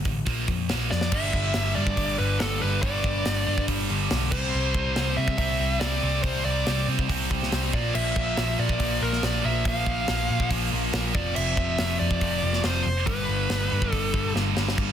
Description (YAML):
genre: hard rock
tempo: 141 BPM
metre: 4/4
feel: straight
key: unclear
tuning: A4 = 441 Hz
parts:
  - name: scooped high-gain guitar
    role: riff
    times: 0.0-14.9 s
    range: F2 to C4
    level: -31 LUFS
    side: right 12 dB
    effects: distortion
  - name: sludgy distorted guitar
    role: riff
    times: 0.0-14.9 s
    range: F2 to C4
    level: -32 LUFS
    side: left 9 dB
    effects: overdrive
  - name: vintage muted picked electric bass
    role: bass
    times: 0.0-14.9 s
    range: F1 to C3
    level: -28 LUFS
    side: equal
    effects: none
  - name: tight metal drum kit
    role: drums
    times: 0.1-14.9 s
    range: crash cymbal, hi-hat, kick drum, snare drum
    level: -29 LUFS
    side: equal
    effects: none
  - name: bluesy overdriven lead guitar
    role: melody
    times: 0.9-14.3 s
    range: A4 to F5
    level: -29 LUFS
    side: equal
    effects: distortion, analog delay
  - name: cranked stack guitar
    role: riff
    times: 1.1-14.9 s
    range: F2 to C4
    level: -33 LUFS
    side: equal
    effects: overdrive
room: light reverb, small room ambience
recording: dense, heavily limited modern master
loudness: -22 LUFS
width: side -9 dB against mid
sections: 0.0-1.1 A section; 1.1-14.8 B section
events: drum fill 0.9, 14.4-14.8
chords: 0.3 Bb5; 1.1 G5; 4.3 C5; 7.7 Bb; 11.1 F5; 13.1 G5